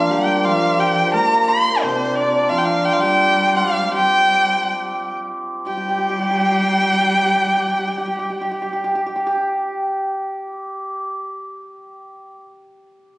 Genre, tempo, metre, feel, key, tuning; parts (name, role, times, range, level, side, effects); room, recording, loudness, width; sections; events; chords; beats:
chinese traditional, Chinese chamber ensemble; 60-88 BPM; 2/4; rubato; G yu mode; A4 = 435 Hz
dark erhu; melody; 0.0-8.8 s; C5 to C6; -17 LUFS; equal
dark cello; second line; 0.0-8.8 s; C3 to Bb3; -25 LUFS; equal
hammered dulcimer; second line; 0.0-12.4 s; Bb3 to C5; -21 LUFS; equal
light reverb; recorded on a phone in the room, club reverb; -16 LUFS; side -21 dB against mid
0.0-5.7 A section; 5.7-9.6 B section
slowing down 2.5-5.7
0.47 | 1.15 1.84 | 2.52 3.21 | 3.94 4.74 | 5.67 6.66 | 7.63 8.61